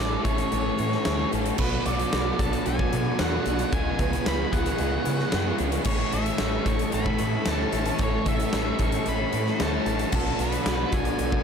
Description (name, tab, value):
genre	rock, shoegaze and dream pop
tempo	112 BPM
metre	4/4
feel	straight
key	A major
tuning	A4 = 440 Hz
part	octave-fuzz lead guitar	melody	0.0-11.4 s	A4 to C#6	-32 LUFS	equal	distortion, analog delay
part	chorused pulse-width pad	sustained chords	0.0-11.4 s	G#4 to D6	-37 LUFS	equal	none
part	picked twelve-string acoustic guitar	arpeggios	0.0-11.4 s	E3 to G#4	-36 LUFS	right 10 dB	ensemble chorus, analog delay
part	raw garage guitar	riff	0.0-11.4 s	A2 to A4	-29 LUFS	left 12 dB	overdrive, lush chorus
part	raw garage guitar	riff	0.0-11.4 s	A2 to A4	-31 LUFS	right 12 dB	overdrive, reverse reverb
part	growling fingered electric bass	bass	0.0-11.4 s	A1 to C#3	-30 LUFS	equal	overdrive
part	huge arena drum kit	drums	0.2-11.4 s	crash cymbal, hi-hat, kick drum, snare drum	-28 LUFS	equal	none
room	light reverb, small room ambience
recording	none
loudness	-22 LUFS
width	side -7 dB against mid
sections	0.0-11.4 A section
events	none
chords	0.0 Amaj7; 1.6 Bm7; 3.7 C#7sus4; 5.9 A; 10.1 Bm7